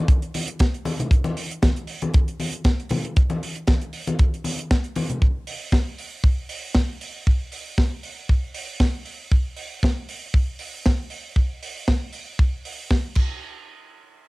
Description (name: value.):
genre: nu-disco.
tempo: 117 BPM.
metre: 4/4.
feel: swing 55% on 16ths.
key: none.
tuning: none.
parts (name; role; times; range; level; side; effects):
kick drum; drums; 0.1-13.3 s; none; -18 LUFS; equal; cassette tape.
tight funk drum kit; drums; 0.1-13.3 s; crash cymbal, hi-hat, snare drum; -28 LUFS; equal; cassette tape.
congas; percussion; 0.3-5.2 s; none; -27 LUFS; left 2 dB; none.
room: light reverb.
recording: home recording on cassette.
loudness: -21 LUFS.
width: side -23 dB against mid.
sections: 0.0-13.4 A section.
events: none.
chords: none.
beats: 0.08 0.60 | 1.11 1.62 2.14 2.65 | 3.16 3.67 4.19 4.70 | 5.21 5.73 6.24 6.75 | 7.26 7.78 8.29 8.80 | 9.31 9.83 10.34 10.85 | 11.37 11.88 12.39 12.90.